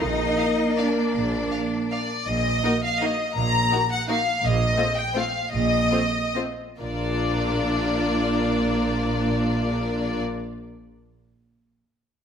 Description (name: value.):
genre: classical.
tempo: 131-184 BPM.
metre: 3/4.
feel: rubato.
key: Bb major.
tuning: A4 = 440 Hz.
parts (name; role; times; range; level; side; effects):
rich chamber violin section; second line; 0.0-10.2 s; F4 to Eb5; -30 LUFS; left 4 dB; none.
rich chamber viola section; accompaniment; 0.0-10.2 s; A3 to Eb4; -27 LUFS; equal; none.
clear chamber double bass section; bass; 0.0-10.2 s; Bb1; -28 LUFS; right 4 dB; none.
rich symphonic cello section; bass; 0.0-10.2 s; Bb2 to Eb4; -30 LUFS; right 1 dB; none.
rich chamber violin section; melody; 0.4-10.2 s; D5 to Bb5; -25 LUFS; left 3 dB; none.
room: wet recital hall reverb, RT60 1.4 s.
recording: none.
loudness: -21 LUFS.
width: side -8 dB against mid.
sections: 0.0-2.3 A section; 2.3-6.8 B section; 6.8-9.4 C section.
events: slowing down 3.9-6.8.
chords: 0.0 Bb; 2.3 Ebm/Bb; 4.4 F7/Bb; 6.8 Bb.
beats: 0.37 0.77 | 1.14 1.51 1.90 | 2.27 2.63 3.01 | 3.36 3.71 4.08 | 4.42 4.77 5.14 | 5.52 5.92 6.36 | 6.80 7.24 7.68 | 8.11 8.54 8.99.